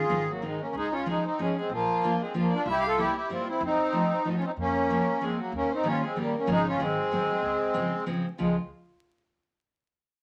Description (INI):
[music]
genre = musette waltz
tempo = 188 BPM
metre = 3/4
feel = swing 53% on 8ths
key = Db major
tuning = A4 = 439 Hz
[part]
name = accordion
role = melody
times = 0.0-8.6 s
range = Eb3 to A4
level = -29 LUFS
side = equal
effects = light tremolo tuning
[part]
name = fingerpicked steel-string acoustic guitar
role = accompaniment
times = 0.0-8.6 s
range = Db3 to F4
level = -32 LUFS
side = equal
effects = none
[part]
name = upright bass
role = bass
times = 0.1-8.6 s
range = Ab1 to F2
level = -42 LUFS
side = equal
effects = none
[part]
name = dark violin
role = second line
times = 0.3-8.6 s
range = Eb4 to F5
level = -39 LUFS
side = equal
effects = none
[sound]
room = wet studio reverb, RT60 0.5 s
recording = vinyl crackle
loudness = -28 LUFS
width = mono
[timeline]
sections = 0.0-8.4 A section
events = none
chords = 0.1 Ab; 0.7 Dbadd9; 1.7 Bb; 2.7 C7; 3.6 F7; 4.6 Bbm7/F; 5.5 Eb7; 6.5 Db/Ab; 6.8 Ab7; 7.4 Dbmaj7